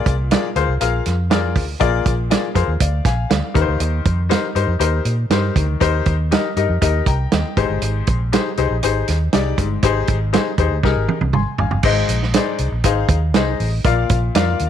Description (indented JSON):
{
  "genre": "uptempo 1960s-style soul",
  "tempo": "120 BPM",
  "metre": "4/4",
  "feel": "straight",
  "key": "unclear",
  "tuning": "A4 = 440 Hz",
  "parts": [
    { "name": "bright concert grand piano", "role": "accompaniment", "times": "0.0-14.7 s", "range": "Ab2 to C6", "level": "-20 LUFS", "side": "left 9 dB", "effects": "none" },
    { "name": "vintage muted fingered electric bass", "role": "bass", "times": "0.1-14.7 s", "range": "G1 to Bb2", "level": "-20 LUFS", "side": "equal", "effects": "none" },
    { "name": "warm soul drum kit", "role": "drums", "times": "0.1-14.7 s", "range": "crash cymbal, hi-hat, kick drum, snare drum, toms", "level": "-19 LUFS", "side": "right 4 dB", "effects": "none" }
  ],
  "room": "light reverb",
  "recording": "1960s-style stereo",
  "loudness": "-16 LUFS",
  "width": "side -9 dB against mid",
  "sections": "0.0-11.8 A section; 11.8-14.7 B section",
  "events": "drum fill 10.8-11.8",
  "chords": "0.0 Bb7; 3.6 Eb6; 7.6 Abmaj7; 11.8 Ab; 13.8 Bb"
}